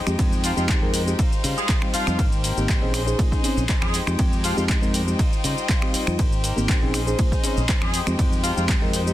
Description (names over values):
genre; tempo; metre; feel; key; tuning
filtered disco house; 120 BPM; 4/4; straight; unclear; A4 = 438 Hz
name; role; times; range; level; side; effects
clear studio violin section; sustained chords; 0.0-9.1 s; Ab3 to G5; -33 LUFS; left 2 dB; sidechain pumping
direct-recorded clean electric guitar; riff; 0.0-9.1 s; G3 to C5; -32 LUFS; left 6 dB; vintage 12-bit sampler grit, sidechain pumping
mellow reed electric piano; accompaniment; 0.1-9.1 s; G3 to C5; -27 LUFS; equal; fast tremolo, phaser, sidechain pumping
modern bright fingered electric bass; bass; 0.1-9.1 s; Ab1 to Db3; -26 LUFS; equal; tube saturation, sidechain pumping
punchy analog drum machine; drums; 0.1-9.1 s; cabasa, finger snaps, handclaps, hi-hat, ride cymbal; -28 LUFS; equal; sidechain pumping on hats, sidechain pumping on perc, sidechain pumping on cymbals
electronic kick drum; drums; 0.2-8.8 s; none; -22 LUFS; equal; none
brilliant horn section; melody; 0.4-4.6, 7.8-8.6 s; F3 to Ab4; -30 LUFS; left 1 dB; sidechain pumping
room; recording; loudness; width
little or no reverb; dense, heavily limited modern master; -19 LUFS; side -14 dB against mid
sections
0.0-9.1 A section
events
none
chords
0.0 Fm9; 1.2 Dbmaj9#11 (rootless); 2.2 Abmaj9; 2.9 Bbm11; 3.9 Fm9; 5.2 Dbmaj9#11 (rootless); 6.2 Abmaj9; 6.9 Bbm11; 7.9 Fm9